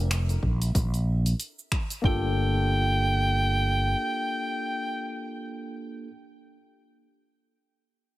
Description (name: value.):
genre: sunset chillout.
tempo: 93 BPM.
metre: 4/4.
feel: swing 58% on 16ths.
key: G minor.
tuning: A4 = 440 Hz.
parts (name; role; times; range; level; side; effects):
mellow fretless electric bass; bass; 0.0-3.9 s; F1 to Bb1; -25 LUFS; equal; none.
deep house drum kit; drums; 0.1-2.0 s; cabasa, finger snaps, hi-hat; -33 LUFS; equal; none.
electronic kick drum; drums; 0.4-2.2 s; none; -27 LUFS; equal; none.
tine electric piano; accompaniment; 2.0-6.1 s; Bb3 to A4; -33 LUFS; moving between left 5 dB and right 3 dB; auto-pan, digital delay.
soft round pluck; arpeggios; 2.0-2.3 s; F4; -41 LUFS; equal; none.
clear soprano saxophone; melody; 2.1-5.4 s; G5; -29 LUFS; equal; digital delay.
room: little or no reverb.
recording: heavily compressed radio sound.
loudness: -24 LUFS.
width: side -17 dB against mid.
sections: 0.0-2.0 A section; 2.0-4.6 B section.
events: none.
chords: 0.0 Bb5; 2.0 Gm9.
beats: 0.11 0.75 1.40 | 2.04 2.69 3.33 3.98.